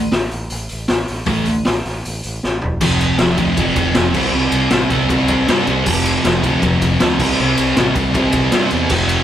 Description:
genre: garage rock duo or trio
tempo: 157 BPM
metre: 4/4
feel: straight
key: unclear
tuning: A4 = 440 Hz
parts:
  - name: growling fingered electric bass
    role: bass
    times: 0.0-9.2 s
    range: E1 to G2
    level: -23 LUFS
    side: equal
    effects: overdrive
  - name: raw garage drum kit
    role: drums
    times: 0.1-9.2 s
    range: crash cymbal, hi-hat, kick drum, ride cymbal, snare drum, toms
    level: -18 LUFS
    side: left 1 dB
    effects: none
  - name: thick fuzz guitar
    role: riff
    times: 1.3-9.2 s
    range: F2 to C4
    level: -16 LUFS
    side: equal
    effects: distortion
room: light reverb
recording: band playing live in one room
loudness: -14 LUFS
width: side -10 dB against mid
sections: 0.0-2.8 A section; 2.8-9.2 B section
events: drum fill 2.4-2.8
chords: 0.0 A5; 2.8 F5; 4.2 C5; 5.9 F5; 7.2 C5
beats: 0.14 0.52 0.90 | 1.29 1.67 2.05 2.44 | 2.82 3.20 3.58 3.96 | 4.34 4.72 5.11 5.49 | 5.87 6.25 6.63 7.01 | 7.39 7.77 8.15 8.53 | 8.90

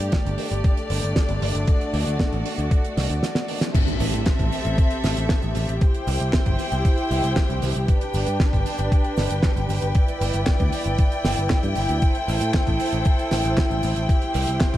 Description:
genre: italo disco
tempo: 116 BPM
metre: 4/4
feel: straight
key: A dorian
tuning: A4 = 440 Hz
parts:
  - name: warm studio string section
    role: sustained chords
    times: 0.0-14.8 s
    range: A3 to G5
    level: -26 LUFS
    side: equal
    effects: none
  - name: picked electric bass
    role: bass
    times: 0.0-14.8 s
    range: G1 to A2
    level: -25 LUFS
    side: equal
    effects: tube saturation
  - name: damped 70s drum kit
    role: drums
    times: 0.0-14.8 s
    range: cabasa, crash cymbal, handclaps, hi-hat, snare drum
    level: -27 LUFS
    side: right 1 dB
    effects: studio reverb
  - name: electronic kick drum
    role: drums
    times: 0.1-14.8 s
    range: none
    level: -20 LUFS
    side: equal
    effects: studio reverb
  - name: impact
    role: sound effects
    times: 3.7-5.8 s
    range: none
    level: -29 LUFS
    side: equal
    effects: none
room: light reverb, studio reverb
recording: dark, warm production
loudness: -19 LUFS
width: side -14 dB against mid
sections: 0.0-3.7 A section; 3.7-14.8 B section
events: drum fill 3.0-3.7; break 3.2-3.7; band accent 3.6; impact 3.7-5.8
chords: 0.0 Gsus2; 1.7 D; 3.7 Am7; 5.8 C; 7.9 G; 10.0 Em7/G; 12.0 Am7; 14.1 C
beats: 0.13 0.64 1.16 | 1.68 2.19 2.71 3.23 | 3.75 4.26 4.78 5.30 | 5.82 6.33 6.85 7.37 | 7.88 8.40 8.92 9.44 | 9.95 10.47 10.99 11.51 | 12.02 12.54 13.06 13.57 | 14.09 14.61

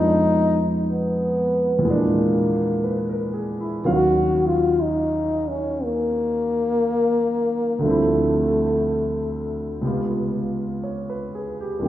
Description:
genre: jazz ballad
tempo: 60 BPM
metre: 4/4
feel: swing 67% on 8ths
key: unclear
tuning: A4 = 442 Hz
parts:
  - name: breathy trombone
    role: melody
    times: 0.0-11.9 s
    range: A3 to Gb4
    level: -21 LUFS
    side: left 1 dB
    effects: none
  - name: warm grand piano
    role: accompaniment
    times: 0.0-11.9 s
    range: C2 to F5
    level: -23 LUFS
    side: right 1 dB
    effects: none
room: wet recital hall reverb, RT60 1.8 s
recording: recorded in a church or concert hall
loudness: -19 LUFS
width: side -13 dB against mid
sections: 0.0-11.9 A section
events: none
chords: 0.0 Fm7b5; 1.8 E7#11; 3.8 Ebm7; 7.8 Dm11; 9.8 Db7#11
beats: 0.84 1.83 2.83 | 3.82 4.82 5.82 6.81 | 7.81 8.81 9.81 10.82 | 11.83

